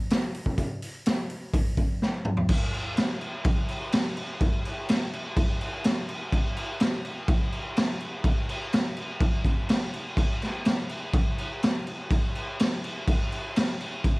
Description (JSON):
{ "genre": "rock", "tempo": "125 BPM", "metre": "4/4", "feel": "straight", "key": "none", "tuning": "none", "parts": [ { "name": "raw garage drum kit", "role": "drums", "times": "0.1-14.2 s", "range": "crash cymbal, hi-hat, kick drum, snare drum, toms", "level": "-25 LUFS", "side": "equal", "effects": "none" } ], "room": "light reverb", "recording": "dark, warm production", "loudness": "-25 LUFS", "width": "side -26 dB against mid", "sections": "0.0-2.5 A section; 2.5-14.2 B section", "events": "drum fill 2.0-2.5", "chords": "none" }